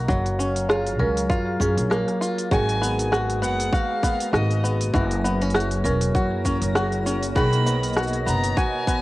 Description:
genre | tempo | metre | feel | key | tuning
folktronica | 99 BPM | 4/4 | swing 56% on 16ths | G# minor | A4 = 445 Hz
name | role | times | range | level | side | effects
warbly tape-like pad | sustained chords | 0.0-9.0 s | B2 to A#5 | -30 LUFS | left 1 dB | chorus, built-in reverb, cassette tape
bluegrass banjo | arpeggios | 0.0-9.0 s | D#3 to F#4 | -26 LUFS | left 1 dB | cassette tape, analog delay
upright bass | bass | 0.0-8.5 s | E1 to F#2 | -25 LUFS | equal | tube saturation
electronic kick drum | drums | 0.1-9.0 s | none | -24 LUFS | equal | cassette tape
organic electronic drum kit | drums | 0.1-9.0 s | cabasa, hi-hat, rim click | -28 LUFS | equal | cassette tape
marimba with hard mallets | second line | 0.7-7.6 s | G#4 to A#4 | -28 LUFS | right 2 dB | cassette tape, analog delay
dark violin | melody | 2.5-9.0 s | D#5 to B5 | -28 LUFS | equal | analog delay
backwards swelling texture | texture | 3.4-9.0 s | A#3 to A#6 | -34 LUFS | equal | built-in reverb, cassette tape
room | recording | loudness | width
light reverb, small room ambience | home recording on cassette | -20 LUFS | side -18 dB against mid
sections
0.0-2.5 A section; 2.5-9.0 B section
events
filter sweep on five-string banjo 0.0-2.5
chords
0.1 F#maj7; 2.5 G#m7; 4.9 F#7; 7.4 Bmaj7

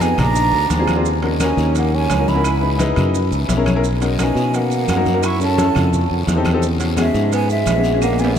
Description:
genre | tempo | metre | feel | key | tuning
Afro-Cuban jazz | 172 BPM | 4/4 | straight | unclear | A4 = 440 Hz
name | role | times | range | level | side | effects
breathy mellow silver concert flute | melody | 0.0-8.4 s | E5 to C#6 | -23 LUFS | right 2 dB | none
breathy tenor saxophone | second line | 0.0-8.4 s | G#3 to E4 | -24 LUFS | right 4 dB | none
clear baby grand piano | accompaniment | 0.0-8.4 s | A#3 to E5 | -21 LUFS | left 3 dB | none
modern bright fingered electric bass | bass | 0.0-8.4 s | A#1 to B2 | -19 LUFS | equal | none
congas | percussion | 0.0-8.4 s | none | -25 LUFS | left 1 dB | none
guiro | percussion | 0.0-8.4 s | none | -34 LUFS | left 6 dB | none
maracas | percussion | 0.0-8.4 s | none | -34 LUFS | right 12 dB | none
timbales | percussion | 0.0-8.3 s | none | -29 LUFS | right 5 dB | none
claves | percussion | 0.2-8.2 s | none | -37 LUFS | left 8 dB | none
room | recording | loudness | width
wet cathedral reverb, RT60 6.1 s | in a vast, echoing space | -15 LUFS | side -8 dB against mid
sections
0.0-8.4 A section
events
grand piano fill 3.3-3.8; drum fill 8.0-8.4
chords
0.4 A#7; 1.1 D#m7; 2.5 C#m7; 3.1 F#7; 3.8 Bmaj7; 5.2 F#m7; 5.9 F9; 6.6 E6

